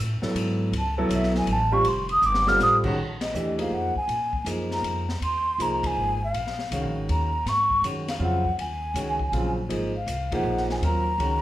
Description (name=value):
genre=modal jazz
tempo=160 BPM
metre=3/4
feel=swing 65% on 8ths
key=Bb minor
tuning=A4 = 441 Hz
part: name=upright bass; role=bass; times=0.0-11.4 s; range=F1 to Bb2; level=-29 LUFS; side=equal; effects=none
part: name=warm concert grand piano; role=accompaniment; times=0.2-11.4 s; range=Db3 to Bb4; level=-28 LUFS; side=right 1 dB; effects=none
part: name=open jazz drum kit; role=drums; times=0.2-11.3 s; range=crash cymbal, hi-hat, kick drum, ride cymbal, snare drum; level=-35 LUFS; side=left 2 dB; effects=none
part: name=mellow hollow concert flute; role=melody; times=0.8-11.4 s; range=C#5 to F6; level=-25 LUFS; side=equal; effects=none
room=wet large studio reverb, RT60 0.8 s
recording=heard from further back in the room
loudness=-22 LUFS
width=side -14 dB against mid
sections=0.0-3.0 A section; 3.0-11.4 B section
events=flute solo 0.0-3.0; drum fill 2.2-2.6; band accent 3.2, 5.8, 10.3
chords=0.0 F#m11; 1.8 F9; 3.0 Bb7sus4; 7.5 Ab9sus4